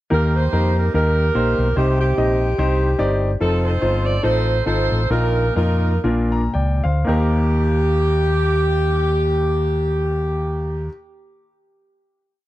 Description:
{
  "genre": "uptempo gospel",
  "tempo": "108-146 BPM",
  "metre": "4/4",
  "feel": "swing 57% on 8ths",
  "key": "Eb major",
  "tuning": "A4 = 440 Hz",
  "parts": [
    { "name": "bright saxophone section", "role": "melody", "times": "0.1-10.9 s", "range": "C4 to D5", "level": "-22 LUFS", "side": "right 1 dB", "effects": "slapback echo" },
    { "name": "clear baby grand piano", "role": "accompaniment", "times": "0.1-10.9 s", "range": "Eb2 to Bb5", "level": "-22 LUFS", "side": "left 1 dB", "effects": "none" },
    { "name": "fingered electric bass", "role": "bass", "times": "0.1-10.9 s", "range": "F1 to F2", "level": "-19 LUFS", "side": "equal", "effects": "none" }
  ],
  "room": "studio ambience",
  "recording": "dry, close 1970s-style studio recording",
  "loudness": "-16 LUFS",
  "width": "side -15 dB against mid",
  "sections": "0.1-7.1 breakdown; 7.1-11.5 final chord",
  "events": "slowing down 3.4-7.1; grand piano fill 6.0-7.1",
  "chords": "0.1 Eb; 1.8 Cm; 3.4 F7; 5.1 Bbsus4; 6.0 Bb; 7.1 Eb",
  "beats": "| 0.12 0.53 0.94 1.35 | 1.76 2.17 2.58 2.99 | 3.40 3.82 4.24 4.66 | 5.10 5.56 6.04 6.54 | 7.08 7.63 8.18 8.73 | 9.29 9.84 10.39"
}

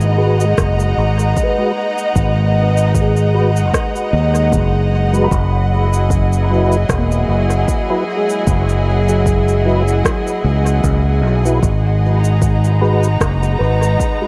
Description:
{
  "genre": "ambient dub",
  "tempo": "76 BPM",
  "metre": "4/4",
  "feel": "swing 55% on 16ths",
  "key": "G# minor",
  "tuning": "A4 = 439 Hz",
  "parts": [
    { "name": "rich studio string section", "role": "sustained chords", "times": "0.0-14.3 s", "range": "F#3 to A#5", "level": "-22 LUFS", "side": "equal", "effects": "none" },
    { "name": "felt-muted upright piano", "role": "arpeggios", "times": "0.0-14.3 s", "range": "G#3 to B5", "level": "-26 LUFS", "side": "equal", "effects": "vintage 12-bit sampler grit, dub echo" },
    { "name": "overdriven fingered electric bass", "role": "bass", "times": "0.0-14.0 s", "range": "E1 to D#2", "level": "-17 LUFS", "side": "equal", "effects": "none" },
    { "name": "electronic cabasa and rim click", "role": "drums", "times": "0.0-14.2 s", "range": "none", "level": "-28 LUFS", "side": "equal", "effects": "dub echo" },
    { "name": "mellow tonewheel organ", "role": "stabs", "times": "0.2-14.3 s", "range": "F#3 to B4", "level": "-25 LUFS", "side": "equal", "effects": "chorus vibrato, slow rotary speaker, vintage 12-bit sampler grit, dub echo" },
    { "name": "electronic kick drum", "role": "drums", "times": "0.6-14.2 s", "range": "none", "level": "-22 LUFS", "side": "equal", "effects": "none" }
  ],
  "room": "light reverb, digital ambience",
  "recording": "echo-heavy mix",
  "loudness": "-15 LUFS",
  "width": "mono",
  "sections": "0.0-14.3 A section",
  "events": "none",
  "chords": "0.0 G#m7; 5.3 F#7sus4; 11.6 G#m7",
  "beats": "0.58 1.37 | 2.16 2.95 3.74 4.53 | 5.32 6.11 6.89 7.68 | 8.47 9.26 10.05 10.84 | 11.63 12.42 13.21 14.00"
}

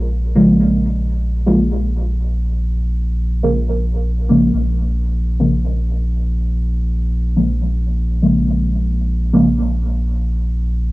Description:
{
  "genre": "dub techno",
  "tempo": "122 BPM",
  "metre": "4/4",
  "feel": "straight",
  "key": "Bb minor",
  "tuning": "A4 = 440 Hz",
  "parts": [
    { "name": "soft dub sub bass", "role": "bass", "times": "0.0-10.9 s", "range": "Bb1", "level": "-17 LUFS", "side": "equal", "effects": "none" },
    { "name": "deep mellow chord stab", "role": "stabs", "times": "0.4-9.5 s", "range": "Db3 to Bb3", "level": "-16 LUFS", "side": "equal", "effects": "chorus, phaser, cassette tape, dub echo" }
  ],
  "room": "light reverb, digital ambience",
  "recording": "home recording on cassette",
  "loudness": "-15 LUFS",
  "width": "side -20 dB against mid",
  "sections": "0.0-10.9 A section",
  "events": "filter sweep on synth stab 0.0-10.9",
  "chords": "0.0 Bbm7",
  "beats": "0.11 | 0.60 1.09 1.58 2.08 | 2.57 3.06 3.55 4.04 | 4.53 5.03 5.52 6.01 | 6.50 6.99 7.49 7.98 | 8.47 8.96 9.45 9.94 | 10.44"
}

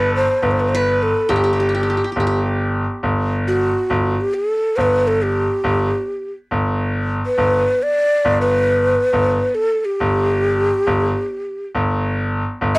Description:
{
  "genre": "arabic",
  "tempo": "69 BPM (dotted quarters)",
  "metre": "6/8",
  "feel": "straight",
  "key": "G maqam ajam",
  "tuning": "A4 = 441 Hz",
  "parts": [
    { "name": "breathy mellow ney", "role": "melody", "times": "0.0-12.8 s", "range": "F#4 to E5", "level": "-17 LUFS", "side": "equal", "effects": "cassette tape" },
    { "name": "qanun", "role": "second line", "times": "0.0-3.5 s", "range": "G4 to B4", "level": "-26 LUFS", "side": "right 2 dB", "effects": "none" },
    { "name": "bright concert grand piano", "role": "bass", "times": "0.0-12.8 s", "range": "G1", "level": "-19 LUFS", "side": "equal", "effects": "none" }
  ],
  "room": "little or no reverb",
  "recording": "home recording on cassette",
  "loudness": "-16 LUFS",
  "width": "side -25 dB against mid",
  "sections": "0.0-3.0 A section; 3.0-12.8 B section",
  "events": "none",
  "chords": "none",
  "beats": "0.42 | 1.29 2.16 | 3.04 3.90 | 4.78 5.65 | 6.52 7.39 | 8.26 9.13 | 10.00 10.87 | 11.74 12.61"
}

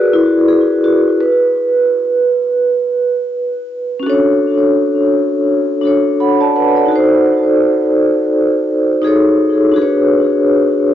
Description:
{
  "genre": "hip hop",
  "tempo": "84 BPM",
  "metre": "4/4",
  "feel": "swing 60% on 16ths",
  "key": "unclear",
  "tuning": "A4 = 438 Hz",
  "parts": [
    { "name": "vibraphone with soft mallets", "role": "solo", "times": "0.0-10.9 s", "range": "C#4 to B5", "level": "-11 LUFS", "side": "equal", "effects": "low-pass filter, analog delay" }
  ],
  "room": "moderate studio reverb, RT60 0.6 s",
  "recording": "dry, gritty hardware recording, nothing above 7.8 kHz",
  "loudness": "-11 LUFS",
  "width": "side -11 dB against mid",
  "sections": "0.0-4.1 A section; 4.1-10.9 B section",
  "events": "vibraphone solo 0.0-4.1",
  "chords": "0.0 N.C.; 4.1 Dmaj7; 6.9 D#dim7; 9.1 F#m69/D#; 9.8 Bm69/D",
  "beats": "0.48 | 1.19 1.91 2.62 3.34 | 4.05 4.77 5.48 6.19 | 6.91 7.62 8.34 9.05 | 9.77 10.48"
}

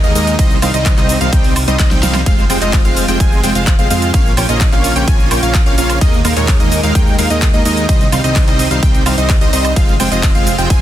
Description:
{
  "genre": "EDM, festival progressive house",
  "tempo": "128 BPM",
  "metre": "4/4",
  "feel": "straight",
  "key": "F minor",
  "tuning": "A4 = 440 Hz",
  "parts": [
    { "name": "supersaw pad", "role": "sustained chords", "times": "0.0-10.8 s", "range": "Bb2 to F4", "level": "-24 LUFS", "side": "right 1 dB", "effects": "none" },
    { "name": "plucky unison lead", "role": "arpeggios", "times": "0.0-10.8 s", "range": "Db5 to Ab5", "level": "-21 LUFS", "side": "equal", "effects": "sidechain pumping, dub echo" },
    { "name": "dense compressed supersaw", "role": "riff", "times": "0.0-10.8 s", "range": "G3 to Ab5", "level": "-17 LUFS", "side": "right 1 dB", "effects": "sidechain pumping, dub echo" },
    { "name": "fat analog bass", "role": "bass", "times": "0.0-10.8 s", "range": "F1 to F2", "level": "-18 LUFS", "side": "equal", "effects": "sidechain pumping" },
    { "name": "big-room dance drum kit", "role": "drums", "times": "0.0-10.8 s", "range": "handclaps, hi-hat, ride cymbal, shaker, snare drum, woodblock", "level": "-20 LUFS", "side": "right 1 dB", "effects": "overdrive" },
    { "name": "electronic kick drum", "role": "drums", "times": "0.4-10.8 s", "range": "none", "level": "-12 LUFS", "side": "equal", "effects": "overdrive" }
  ],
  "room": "little or no reverb",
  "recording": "dense, heavily limited modern master",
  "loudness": "-10 LUFS",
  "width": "side -12 dB against mid",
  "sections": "0.0-10.8 A section",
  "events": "drum fill 1.8-2.3",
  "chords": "0.4 Cm; 2.3 Fm; 4.1 Bbm; 6.0 Ebsus4; 7.9 Cm; 9.8 Fm",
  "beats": "| 0.39 0.86 1.33 1.79 | 2.26 2.73 3.20 3.67 | 4.14 4.61 5.08 5.54 | 6.01 6.48 6.95 7.42 | 7.89 8.36 8.83 9.29 | 9.76 10.23 10.70"
}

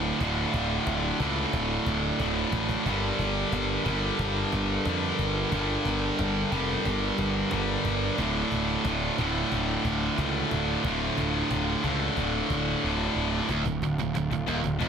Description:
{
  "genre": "heavy metal",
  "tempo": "90 BPM",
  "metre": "4/4",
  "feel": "straight",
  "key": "D minor",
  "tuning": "A4 = 440 Hz",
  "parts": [
    { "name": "dark chamber string section", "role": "sustained chords", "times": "0.0-14.9 s", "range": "D3 to Bb4", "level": "-38 LUFS", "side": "left 2 dB", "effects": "none" },
    { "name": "distorted electric guitar", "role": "riff", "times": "0.0-14.9 s", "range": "D2 to G3", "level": "-30 LUFS", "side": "left 13 dB", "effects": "overdrive" },
    { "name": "heavy high-gain guitar", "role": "riff", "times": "0.0-14.9 s", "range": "D2 to G3", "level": "-29 LUFS", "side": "right 10 dB", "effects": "distortion" },
    { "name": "fuzz picked electric bass", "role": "bass", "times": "0.0-14.9 s", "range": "D1 to F2", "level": "-31 LUFS", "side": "equal", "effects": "overdrive" },
    { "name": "cajon", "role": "drums", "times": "0.2-14.9 s", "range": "none", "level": "-34 LUFS", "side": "equal", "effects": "none" }
  ],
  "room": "small room ambience",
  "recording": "dense, heavily limited modern master",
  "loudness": "-25 LUFS",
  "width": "side -7 dB against mid",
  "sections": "0.0-13.5 A section; 13.5-14.9 B section",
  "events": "drum fill 2.2-2.9; kick and snare drop out 12.8-13.5",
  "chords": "0.0 Dm; 2.9 Gm; 8.2 Dm",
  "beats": "| 0.21 0.88 1.54 2.21 | 2.87 3.54 4.20 4.87 | 5.53 6.20 6.86 7.53 | 8.19 8.85 9.52 10.18 | 10.85 11.51 12.17 12.83 | 13.50 14.16 14.82"
}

